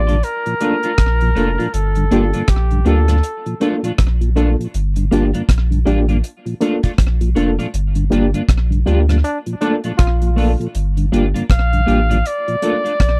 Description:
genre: roots reggae.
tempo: 80 BPM.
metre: 4/4.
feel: swing 60% on 16ths.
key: G minor.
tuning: A4 = 440 Hz.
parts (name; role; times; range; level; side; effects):
clear flugelhorn; melody; 0.0-3.6, 11.5-13.2 s; G4 to F5; -23 LUFS; equal; tape echo.
reed electric piano; stabs; 0.0-12.8 s; Bb3 to A4; -22 LUFS; equal; fast tremolo.
warm sub bass; bass; 0.0-13.2 s; F1 to D2; -18 LUFS; equal; none.
clean electric guitar; accompaniment; 0.1-12.9 s; A3 to F4; -25 LUFS; equal; analog chorus, tape echo.
mellow tonewheel organ; accompaniment; 0.1-12.8 s; G2 to F4; -24 LUFS; equal; chorus vibrato, slow rotary speaker.
deep reggae drum kit; drums; 0.1-13.2 s; hi-hat, kick drum, rim click; -19 LUFS; equal; slapback echo.
clear trombone; second line; 9.2-10.6 s; D4 to F4; -26 LUFS; equal; tape echo.
room: little or no reverb.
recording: dry, close 1970s-style studio recording.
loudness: -17 LUFS.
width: mono.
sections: 0.0-13.2 A section.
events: band accent 7.7-10.7.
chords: 0.2 Bbmaj7; 1.7 Gm7; 3.2 Bbmaj7; 4.7 Gm7; 6.2 Bbmaj7; 7.7 Gm7; 9.2 Bbmaj7; 10.7 Gm7; 12.2 Bbmaj7.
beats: 0.24 0.99 | 1.74 2.49 3.24 3.99 | 4.74 5.49 6.24 6.99 | 7.74 8.49 9.24 9.99 | 10.74 11.49 12.24 12.99.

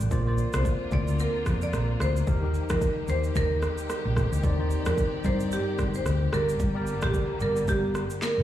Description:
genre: afrobeats.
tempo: 111 BPM.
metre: 4/4.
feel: swing 58% on 16ths.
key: unclear.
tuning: A4 = 438 Hz.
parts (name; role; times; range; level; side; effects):
tine electric piano; accompaniment; 0.0-8.4 s; Eb3 to G5; -33 LUFS; left 3 dB; medium stereo tremolo.
hollow-body short-scale fingered electric bass; bass; 0.0-8.4 s; F1 to G2; -27 LUFS; equal; none.
afro-pop drum kit; drums; 0.0-8.4 s; kick drum, rim click, shaker, snare drum, toms; -30 LUFS; equal; none.
muted studio string section; sustained chords; 0.1-8.4 s; D3 to D5; -37 LUFS; equal; none.
marimba with medium hard mallets; melody; 0.6-8.4 s; G4 to D5; -30 LUFS; right 2 dB; tape echo.
room: light reverb.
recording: played on a big sound system in a bare room, stone room reverb, small room ambience.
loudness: -24 LUFS.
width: side -12 dB against mid.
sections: 0.1-8.4 A section.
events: drum fill 8.2.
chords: 0.1 Bbadd9; 2.3 Eb; 4.4 Cmadd9/Eb; 6.3 Gm.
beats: | 0.11 0.65 1.19 1.73 | 2.27 2.81 3.35 3.90 | 4.44 4.98 5.52 6.06 | 6.60 7.14 7.68 8.22.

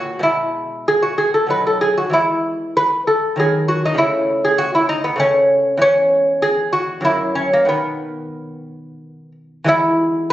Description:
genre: classical, baroque-style dance for lute.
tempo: 90-100 BPM.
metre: 3/4.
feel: rubato.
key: E major, B major from 5.8 s.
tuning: A4 = 440 Hz.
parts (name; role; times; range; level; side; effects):
lute; solo; 0.0-10.3 s; E2 to B4; -15 LUFS; equal; none.
room: light reverb.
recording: recorded on a phone in the room, studio reverb, compression, nothing above 7.8 kHz.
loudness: -14 LUFS.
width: side -13 dB against mid.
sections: 0.0-9.7 A section.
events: none.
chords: 0.2 E/B; 1.5 B; 2.2 E; 3.4 B/D#; 4.0 A/C#; 5.8 C#m/E; 7.1 F#7; 7.7 B; 9.7 E.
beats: | 0.24 0.88 1.52 | 2.15 2.78 3.39 | 4.00 4.60 5.21 | 5.82 6.43 7.06 | 7.71 8.38 9.04 | 9.69 10.32.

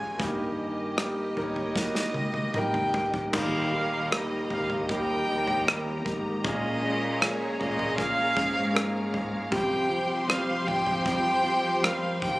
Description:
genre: pop ballad.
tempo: 77 BPM.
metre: 4/4.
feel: straight.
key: unclear.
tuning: A4 = 440 Hz.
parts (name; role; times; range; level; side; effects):
dark violin; melody; 0.0-12.4 s; Db5 to Ab5; -29 LUFS; equal; none.
clear concert grand piano; accompaniment; 0.0-12.4 s; F2 to Bb4; -31 LUFS; equal; none.
warm studio string section; sustained chords; 0.0-12.4 s; F2 to C6; -34 LUFS; equal; none.
natural country drum kit; drums; 0.2-12.4 s; crash cymbal, kick drum, rim click, snare drum, toms; -30 LUFS; equal; none.
fingerpicked plugged-in steel-string acoustic guitar; arpeggios; 3.3-12.4 s; F2 to Ab4; -34 LUFS; equal; none.
rich studio cello section; bass; 3.3-12.4 s; Eb2 to Bb2; -33 LUFS; equal; none.
room: moderate plate reverb, RT60 3.3 s.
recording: recorded on a phone in the room, club reverb, compression.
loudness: -25 LUFS.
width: side -19 dB against mid.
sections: 0.0-3.3 A section; 3.3-12.4 B section.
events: drum fill 1.8-3.3.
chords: 0.2 Eb/G; 3.3 Eb; 6.4 Bbm7; 9.5 Fsus2.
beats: | 0.20 0.98 1.76 2.55 | 3.34 4.12 4.90 5.67 | 6.45 7.22 7.98 8.75 | 9.52 10.29 11.06 11.84.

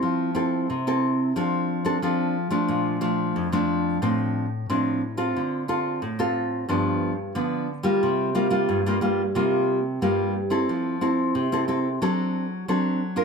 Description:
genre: samba.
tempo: 90 BPM.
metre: 4/4.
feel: straight.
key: F major.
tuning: A4 = 440 Hz.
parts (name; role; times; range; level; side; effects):
nylon-string guitar; solo; 0.0-13.2 s; F2 to Bb4; -22 LUFS; equal; none.
room: moderate large studio reverb, RT60 1.2 s.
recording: none.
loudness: -22 LUFS.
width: side -5 dB against mid.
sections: 0.0-13.2 A section.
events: none.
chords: 0.0 Fmaj7; 1.4 Dm7/F; 2.7 Bbmaj7; 4.0 F6/A; 6.7 G7; 8.0 C7sus4; 10.7 Fmaj7; 12.0 D7/F#.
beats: | 0.02 0.69 1.35 2.02 | 2.69 3.35 4.02 4.69 | 5.35 6.02 6.69 7.35 | 8.02 8.69 9.35 10.02 | 10.68 11.35 12.02 12.68.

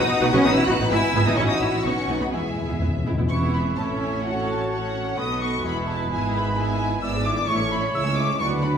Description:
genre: quick classical-period movement for symphony orchestra.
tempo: 129 BPM.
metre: 2/4.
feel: straight.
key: E major.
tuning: A4 = 442 Hz.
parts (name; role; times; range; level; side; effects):
rich studio violin section; melody; 0.0-8.7 s; F#5 to F#6; -30 LUFS; left 1 dB; none.
rich studio violin section; second line; 0.0-8.8 s; F#4 to G#5; -30 LUFS; left 2 dB; none.
rich studio viola section; accompaniment; 0.0-8.8 s; G#3 to G#4; -28 LUFS; equal; none.
mellow French horn section; sustained chords; 0.0-8.8 s; F#3 to F#4; -30 LUFS; left 3 dB; none.
warm studio cello section; bass; 0.0-8.8 s; C#2 to F#4; -27 LUFS; right 1 dB; none.
warm studio double bass section; bass; 0.0-8.8 s; E1 to E2; -27 LUFS; right 3 dB; none.
timpani; percussion; 2.3-3.3 s; E2; -26 LUFS; left 1 dB; none.
mellow hollow concert flute; second line; 3.3-8.8 s; F#5 to E6; -30 LUFS; left 2 dB; none.
warm trumpet; stabs; 3.3-8.8 s; B4 to D5; -30 LUFS; right 4 dB; none.
room: wet recital hall reverb, RT60 1.5 s.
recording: heard from further back in the room.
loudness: -20 LUFS.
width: side -7 dB against mid.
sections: 0.0-3.3 A section; 3.3-8.8 B section.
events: timpani fill 2.3-3.3.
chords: 0.0 B; 0.4 B7; 0.9 E; 1.4 F#m7; 1.8 B; 2.3 E; 3.8 A; 4.2 F#m/A; 5.2 B7; 5.6 E; 6.1 E/G#; 7.0 E7/G#; 7.5 A; 7.9 C#m.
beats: | 0.45 0.91 | 1.38 1.85 | 2.33 2.81 | 3.30 3.78 | 4.25 4.71 | 5.18 5.64 | 6.10 6.56 | 7.02 7.48 | 7.94 8.40.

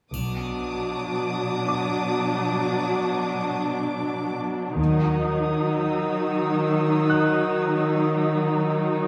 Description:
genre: cinematic, suspense film score.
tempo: 78 BPM.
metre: 3/4.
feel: straight.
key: unclear.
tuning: A4 = 440 Hz.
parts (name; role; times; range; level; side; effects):
warm studio viola section; accompaniment; 0.1-9.1 s; F#3 to D#4; -27 LUFS; equal; none.
rich chamber cello section; bass; 0.1-9.1 s; B2 to D#3; -28 LUFS; equal; none.
rich chamber double bass section; bass; 0.1-0.9, 4.8-5.5 s; B1 to D#2; -30 LUFS; equal; none.
triangle; percussion; 0.1-1.6 s; none; -46 LUFS; equal; none.
warm symphonic violin section; texture; 0.1-9.0 s; D6 to E6; -38 LUFS; equal; none.
bright grand piano; texture; 1.7-9.1 s; D6 to F#6; -35 LUFS; equal; none.
room: wet scoring stage reverb, RT60 1.6 s.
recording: heard from further back in the room.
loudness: -24 LUFS.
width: mono.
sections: 0.1-9.1 A section.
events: none.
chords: 0.1 Bm; 4.8 D#m.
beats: | 0.14 0.92 1.69 | 2.46 3.23 4.01 | 4.78 5.55 6.32 | 7.08 7.85 8.61.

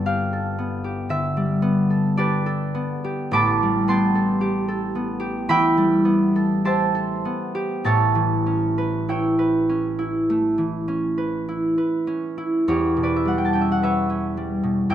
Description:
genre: classical, solo harp piece.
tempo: 49-58 BPM.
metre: 4/4.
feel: rubato.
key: unclear.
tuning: A4 = 440 Hz.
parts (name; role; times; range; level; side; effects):
concert harp; solo; 0.0-14.9 s; G1 to D6; -19 LUFS; equal; none.
room: moderate scoring stage reverb, RT60 2.0 s.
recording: close, detailed microphones.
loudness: -19 LUFS.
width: side -10 dB against mid.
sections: 0.0-12.7 A section; 12.7-14.9 B section.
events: none.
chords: 0.0 Gadd9; 3.3 Am9; 7.9 A9; 12.7 Em6.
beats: 0.08 1.11 2.18 | 3.34 4.42 5.50 6.65 | 7.85 9.08 10.29 11.47 | 12.67 13.81 14.89.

